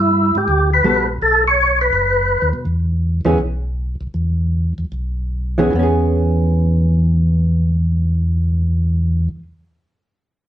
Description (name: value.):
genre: soul jazz organ trio.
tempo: 141-166 BPM.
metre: 4/4.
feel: swing 64% on 8ths.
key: E major.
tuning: A4 = 441 Hz.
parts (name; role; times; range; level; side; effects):
percussive tonewheel organ; melody; 0.0-2.5 s; E4 to C#5; -14 LUFS; equal; slow rotary speaker, overdrive, chorus vibrato.
mellow tonewheel organ; bass; 0.0-9.3 s; F#1 to B2; -17 LUFS; equal; slow rotary speaker.
hollow-body jazz guitar; accompaniment; 0.8-1.1, 3.3-3.4, 5.6-9.4 s; E3 to A4; -18 LUFS; right 1 dB; none.
room: moderate studio reverb, RT60 0.7 s.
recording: band playing live in one room.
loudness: -15 LUFS.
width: side -11 dB against mid.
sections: 0.0-5.7 A section; 5.7-9.1 B section.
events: slowing down 2.7-5.7.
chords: 0.0 Gmaj9; 1.2 B; 2.7 E5; 5.7 E6.